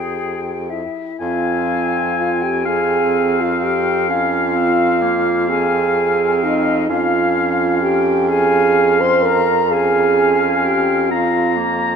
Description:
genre	classical, slow romantic movement for wind quintet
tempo	38-43 BPM (dotted quarters)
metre	12/8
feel	rubato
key	F minor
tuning	A4 = 439 Hz
part	silver concert flute	melody	0.0-11.6 s	Eb5 to C6	-23 LUFS	left 7 dB	none
part	clear oboe	second line	0.0-12.0 s	Ab4 to Bb5	-20 LUFS	left 4 dB	none
part	bright clarinet	accompaniment	0.0-12.0 s	Bb3 to Ab4	-24 LUFS	right 6 dB	none
part	warm French horn	accompaniment	0.0-11.6 s	Eb4 to C5	-18 LUFS	right 2 dB	none
part	clear bassoon	bass	0.0-12.0 s	F2	-23 LUFS	right 3 dB	none
room	moderate concert hall reverb, RT60 2.2 s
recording	none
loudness	-14 LUFS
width	side -6 dB against mid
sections	0.0-1.2 A section; 1.2-12.0 A section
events	none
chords	0.0 Fm; 6.9 Bbm/F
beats	| 1.21 2.67 4.10 5.49 | 6.89 8.29 9.70 11.11

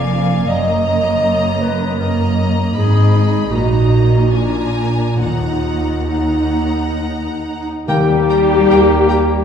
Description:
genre	classical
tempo	65-81 BPM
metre	3/4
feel	rubato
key	Eb minor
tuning	A4 = 440 Hz
part	clear studio violin section	melody	0.0-9.2 s	Ab5 to Cb6	-28 LUFS	left 2 dB	none
part	dark clarinet	second line	0.0-9.4 s	Eb4 to Eb5	-21 LUFS	equal	none
part	rich studio violin section	second line	0.0-9.2 s	Eb5 to Ab5	-27 LUFS	left 2 dB	none
part	dark studio viola section	accompaniment	0.0-9.4 s	Bb3 to G4	-19 LUFS	left 1 dB	none
part	rich studio cello section	bass	0.0-9.4 s	Eb2 to G3	-19 LUFS	right 1 dB	none
part	rich studio double bass section	bass	0.0-9.4 s	F1 to Eb2	-20 LUFS	right 1 dB	none
part	timpani	percussion	5.2-9.1 s	Eb3	-22 LUFS	left 2 dB	none
part	mellow cor anglais	second line	7.9-8.2 s	G5	-27 LUFS	right 3 dB	none
part	silver concert flute	second line	7.9-9.4 s	G5	-26 LUFS	right 2 dB	none
part	mellow bassoon	accompaniment	7.9-8.2 s	Bb3	-25 LUFS	right 1 dB	none
part	mellow trumpet	stabs	7.9-9.4 s	Bb3	-22 LUFS	left 1 dB	none
part	warm French horn section	sustained chords	8.7-9.4 s	G3 to Bb3	-23 LUFS	left 1 dB	none
room	wet scoring stage reverb, RT60 1.6 s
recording	heard from further back in the room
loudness	-13 LUFS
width	side -7 dB against mid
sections	0.0-7.9 A section; 7.9-9.4 B section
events	none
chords	0.5 Ebm/Gb; 2.8 Abm; 3.5 Ebm/Bb; 4.3 Bb7; 5.2 Ebm; 7.9 Eb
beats	| 0.49 1.25 2.00 | 2.75 3.51 4.34 | 5.22 6.11 7.00 | 7.89 8.71

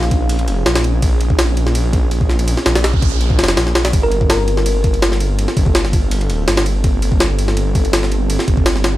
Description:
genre	drum and bass, jungle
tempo	165 BPM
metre	4/4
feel	straight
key	G minor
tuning	A4 = 440 Hz
part	ethereal airy pad	sustained chords	0.0-9.0 s	Bb3 to A4	-25 LUFS	right 3 dB	ensemble chorus, built-in reverb
part	detuned saw bass	bass	0.0-9.0 s	D1 to Bb1	-17 LUFS	equal	none
part	jungle sampler-style drum kit	drums	0.0-8.9 s	kick drum, ride cymbal, snare drum	-16 LUFS	equal	studio reverb
part	noise sweep	sound effects	2.8-3.9 s	none	-29 LUFS	right 2 dB	none
part	thumb-piano-like synth pluck	melody	4.0-4.6 s	Bb4	-23 LUFS	left 2 dB	chorus, dub echo
room	little or no reverb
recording	dry, gritty hardware recording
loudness	-13 LUFS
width	side -15 dB against mid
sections	0.0-9.0 A section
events	noise sweep 2.8-3.9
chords	0.0 Bbm11; 3.9 Gm11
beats	0.30 0.66 | 1.02 1.39 1.75 2.12 | 2.48 2.84 3.21 3.57 | 3.93 4.30 4.66 5.03 | 5.39 5.75 6.12 6.48 | 6.84 7.21 7.57 7.93 | 8.30 8.66

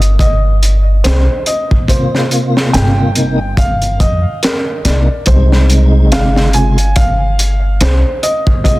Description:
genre	trip hop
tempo	71 BPM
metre	4/4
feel	swing 57% on 16ths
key	C minor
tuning	A4 = 440 Hz
part	felt-muted upright piano	melody	0.0-8.8 s	Bb4 to Ab5	-19 LUFS	equal	tape echo
part	upright bass	bass	0.0-8.0 s	G1 to F2	-12 LUFS	equal	tube saturation
part	crunchy breakbeat drum kit	drums	0.0-8.8 s	hi-hat, kick drum, snare drum	-15 LUFS	equal	none
part	mellow tonewheel organ	accompaniment	1.9-8.8 s	C3 to F4	-16 LUFS	equal	chorus vibrato, fast rotary speaker, tremolo, tape echo
room	small room reverb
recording	dense, heavily limited modern master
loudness	-10 LUFS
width	side -19 dB against mid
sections	0.0-8.8 A section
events	none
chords	0.0 Cm7; 5.3 Ab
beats	0.20 1.04 | 1.89 2.73 3.58 4.42 | 5.27 6.11 6.96 7.80 | 8.65

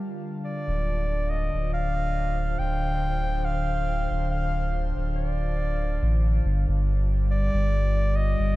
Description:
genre	ambient dub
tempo	70 BPM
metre	4/4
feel	swing 54% on 16ths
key	unclear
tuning	A4 = 440 Hz
part	airy breathy pad	sustained chords	0.0-8.6 s	D3 to A5	-32 LUFS	left 1 dB	chorus
part	clear clarinet	melody	0.4-8.6 s	D5 to G5	-31 LUFS	equal	dub echo
part	warm sub bass	bass	0.7-8.6 s	D1 to A1	-24 LUFS	equal	none
room	light reverb, studio reverb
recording	dark, warm production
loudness	-23 LUFS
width	side -18 dB against mid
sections	0.0-8.6 A section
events	none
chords	0.0 Dm7; 6.9 G7(no3)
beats	| 0.02 0.88 1.73 2.59 | 3.45 4.31 5.16 6.02 | 6.88 7.73

